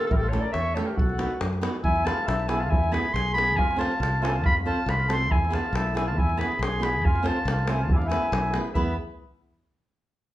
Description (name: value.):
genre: balkan folk, Balkan wedding band.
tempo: 139 BPM.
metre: 2/4.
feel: straight.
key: unclear.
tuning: A4 = 442 Hz.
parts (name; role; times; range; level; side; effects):
clear clarinet; melody; 0.0-8.9 s; A4 to C6; -27 LUFS; equal; none.
mellow accordion; second line; 0.0-9.0 s; D4 to C#5; -32 LUFS; left 1 dB; none.
flamenco guitar; accompaniment; 0.0-9.0 s; A3 to C5; -32 LUFS; right 2 dB; none.
davul; percussion; 0.0-9.0 s; none; -28 LUFS; equal; none.
fingered electric bass; bass; 0.1-9.0 s; A1 to F#2; -28 LUFS; equal; none.
room: moderate large studio reverb, RT60 0.8 s.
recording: band playing live in one room.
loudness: -22 LUFS.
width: side -14 dB against mid.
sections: 0.0-1.8 A section; 1.8-8.8 B section.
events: none.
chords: 0.1 A; 1.0 B7; 1.8 E; 3.6 F; 5.3 E; 7.0 F; 7.9 E.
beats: | 0.10 0.53 | 0.97 1.40 | 1.84 2.27 | 2.70 3.14 | 3.57 4.00 | 4.44 4.87 | 5.30 5.74 | 6.17 6.60 | 7.03 7.46 | 7.90 8.33 | 8.76.